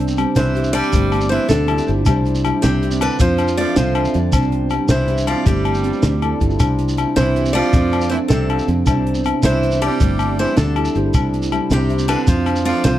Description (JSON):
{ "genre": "highlife guitar band", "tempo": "106 BPM (dotted quarters)", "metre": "12/8", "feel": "straight", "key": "C major", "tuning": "A4 = 440 Hz", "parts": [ { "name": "nylon-string guitar", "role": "accompaniment", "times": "0.0-13.0 s", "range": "C3 to C5", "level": "-27 LUFS", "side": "left 6 dB", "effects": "none" }, { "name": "handpan", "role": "arpeggios", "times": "0.0-13.0 s", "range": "G3 to A4", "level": "-21 LUFS", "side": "right 4 dB", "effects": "tape echo" }, { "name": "fingered electric bass", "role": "bass", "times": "0.0-13.0 s", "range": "G1 to F2", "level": "-20 LUFS", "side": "equal", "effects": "none" }, { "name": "compact cocktail drum kit", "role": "drums", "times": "0.0-12.9 s", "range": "hi-hat, kick drum, snare drum", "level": "-20 LUFS", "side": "equal", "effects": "none" }, { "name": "shekere", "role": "percussion", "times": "0.1-12.9 s", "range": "none", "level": "-24 LUFS", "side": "right 1 dB", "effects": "none" }, { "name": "agogo bells", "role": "percussion", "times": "0.2-12.7 s", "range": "none", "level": "-25 LUFS", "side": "left 8 dB", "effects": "none" }, { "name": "picked steel-string acoustic guitar", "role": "melody", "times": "0.4-13.0 s", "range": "C4 to D5", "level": "-22 LUFS", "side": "equal", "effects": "tape echo" }, { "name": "raspy tenor saxophone", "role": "second line", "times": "0.4-13.0 s", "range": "C3 to G3", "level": "-28 LUFS", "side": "right 7 dB", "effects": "none" } ], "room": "small room ambience", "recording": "dry, close 1970s-style studio recording", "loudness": "-15 LUFS", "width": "side -13 dB against mid", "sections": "0.0-13.0 A section", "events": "none", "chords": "0.0 Cadd9; 0.9 Gsus2; 2.1 Cadd9; 3.2 F; 4.3 Cadd9; 5.5 Gsus2; 6.6 Cadd9; 7.7 F; 8.9 Cadd9; 10.0 Gsus2; 11.1 Cadd9; 12.3 F" }